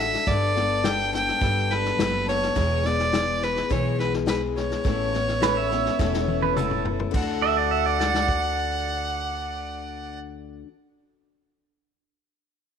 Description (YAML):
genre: honky-tonk and classic country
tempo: 105 BPM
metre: 4/4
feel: straight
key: D major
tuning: A4 = 440 Hz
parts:
  - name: clear fiddle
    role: melody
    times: 0.0-10.2 s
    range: B4 to G5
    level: -26 LUFS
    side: right 1 dB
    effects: none
  - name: picked steel-string acoustic guitar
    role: accompaniment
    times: 0.0-10.7 s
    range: E2 to A4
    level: -29 LUFS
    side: left 11 dB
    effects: none
  - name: upright bass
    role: bass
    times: 0.0-10.6 s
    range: E1 to D2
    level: -29 LUFS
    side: right 2 dB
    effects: none
  - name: vintage drum kit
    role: drums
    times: 0.1-8.4 s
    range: crash cymbal, hi-hat, kick drum, snare drum, toms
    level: -29 LUFS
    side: left 3 dB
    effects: none
  - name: pedal steel guitar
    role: second line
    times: 5.4-10.2 s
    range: A4 to E5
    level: -26 LUFS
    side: right 13 dB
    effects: none
room: light reverb, studio reverb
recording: 1960s-style stereo with parts hard left and right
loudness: -21 LUFS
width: side -7 dB against mid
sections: 0.0-7.1 A section; 7.1-9.4 B section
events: drum fill 6.0-7.1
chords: 0.3 Gadd9; 2.6 E; 4.9 Aadd9; 7.1 D